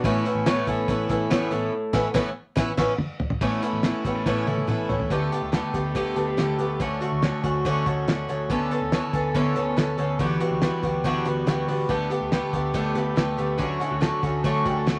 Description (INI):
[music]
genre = jangly indie pop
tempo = 141 BPM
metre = 4/4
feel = straight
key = unclear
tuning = A4 = 440 Hz
[part]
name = picked twelve-string acoustic guitar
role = accompaniment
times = 0.0-15.0 s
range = A2 to A4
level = -28 LUFS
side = equal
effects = none
[part]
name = electric guitar at the edge of break-up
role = arpeggios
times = 0.0-15.0 s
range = D3 to C#5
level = -31 LUFS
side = equal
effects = none
[part]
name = vintage muted picked electric bass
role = bass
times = 0.0-15.0 s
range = A1 to D2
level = -33 LUFS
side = equal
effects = none
[part]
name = cloth-damped thuddy drum kit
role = drums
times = 0.0-15.0 s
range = crash cymbal, hi-hat, kick drum, snare drum, toms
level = -29 LUFS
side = equal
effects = none
[sound]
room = light reverb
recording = none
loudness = -25 LUFS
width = mono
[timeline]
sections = 0.0-3.4 A section; 3.4-5.1 B section; 5.1-15.0 C section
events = drum fill 1.7-3.4, 4.3-5.1; band accent 1.7-3.4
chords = 0.0 Aadd9; 5.1 Gadd9/D; 6.8 Dmaj7; 8.5 Aadd9/D; 10.2 Emadd9/D; 11.9 Gadd9/D; 13.6 Dmaj7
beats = | 0.03 0.46 0.88 1.30 | 1.72 2.14 2.56 2.99 | 3.41 3.83 4.26 4.68 | 5.10 5.53 5.95 6.38 | 6.80 7.22 7.65 8.07 | 8.50 8.92 9.35 9.77 | 10.20 10.62 11.05 11.47 | 11.89 12.32 12.74 13.17 | 13.59 14.02 14.44 14.87